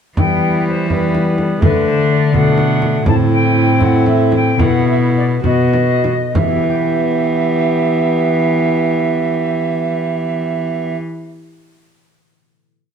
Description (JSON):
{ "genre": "classical, renaissance-style consort dance", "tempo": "62-84 BPM (dotted quarters)", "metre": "6/8", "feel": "straight", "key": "E minor", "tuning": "A4 = 439 Hz", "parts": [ { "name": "mellow alto recorder", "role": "melody", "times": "0.2-10.9 s", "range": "A4 to A5", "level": "-20 LUFS", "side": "right 4 dB", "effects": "none" }, { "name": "warm viola", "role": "second line", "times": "0.2-11.0 s", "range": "B3 to G4", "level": "-22 LUFS", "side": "right 3 dB", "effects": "none" }, { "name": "clear trombone", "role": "accompaniment", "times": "0.2-11.0 s", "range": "G3 to C4", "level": "-19 LUFS", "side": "left 2 dB", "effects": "none" }, { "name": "concert harp", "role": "accompaniment", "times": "0.2-11.4 s", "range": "A2 to G5", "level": "-21 LUFS", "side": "left 5 dB", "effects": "none" }, { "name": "rich cello", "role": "bass", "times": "0.2-10.9 s", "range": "A2 to E3", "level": "-18 LUFS", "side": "right 1 dB", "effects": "none" }, { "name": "frame drum", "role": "percussion", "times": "0.2-6.7 s", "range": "none", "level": "-19 LUFS", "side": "right 1 dB", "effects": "none" } ], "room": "wet stone room reverb, RT60 1.1 s", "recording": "heard from further back in the room", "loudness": "-12 LUFS", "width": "side -7 dB against mid", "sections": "0.2-6.4 A section; 6.4-10.2 final chord", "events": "slowing down 2.3-6.4", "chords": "0.2 Em; 1.6 D; 3.1 Am; 4.6 Bsus4; 5.4 B; 6.4 Em", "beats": "| 0.17 0.90 | 1.62 2.33 | 3.06 3.80 | 4.59 5.43 | 6.36 7.31 | 8.27 9.23" }